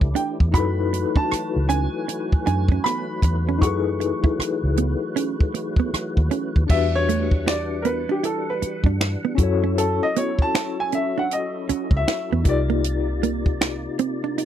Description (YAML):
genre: R&B, neo-soul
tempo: 78 BPM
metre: 4/4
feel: swing 64% on 16ths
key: unclear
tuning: A4 = 440 Hz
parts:
  - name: mellow tine electric piano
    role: accompaniment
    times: 0.0-14.4 s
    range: C#4 to E5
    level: -27 LUFS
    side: left 10 dB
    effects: medium tremolo
  - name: percussive tonewheel organ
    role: sustained chords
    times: 0.0-14.4 s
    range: C3 to F#5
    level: -32 LUFS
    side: right 1 dB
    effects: overdrive, chorus vibrato, slow rotary speaker
  - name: vintage muted fingered electric bass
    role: bass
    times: 0.0-13.9 s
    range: C2 to G2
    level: -24 LUFS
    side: equal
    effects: none
  - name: compact cocktail drum kit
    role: drums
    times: 0.0-14.4 s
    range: crash cymbal, finger snaps, hi-hat, kick drum, rim click, snare drum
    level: -21 LUFS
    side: equal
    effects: none
  - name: clear grand piano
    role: melody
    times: 0.2-12.6 s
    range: G4 to C#6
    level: -26 LUFS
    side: equal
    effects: tape echo
  - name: hollow-body jazz guitar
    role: second line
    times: 0.2-14.4 s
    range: A3 to F#4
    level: -25 LUFS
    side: right 12 dB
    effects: none
room: little or no reverb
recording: dry, close 1970s-style studio recording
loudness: -20 LUFS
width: side -10 dB against mid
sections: 0.0-6.7 A section; 6.7-14.4 B section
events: grand piano solo 6.7-14.4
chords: 0.0 Em7; 0.5 F#m11; 6.7 Em9; 9.4 F#m7; 12.5 Cm9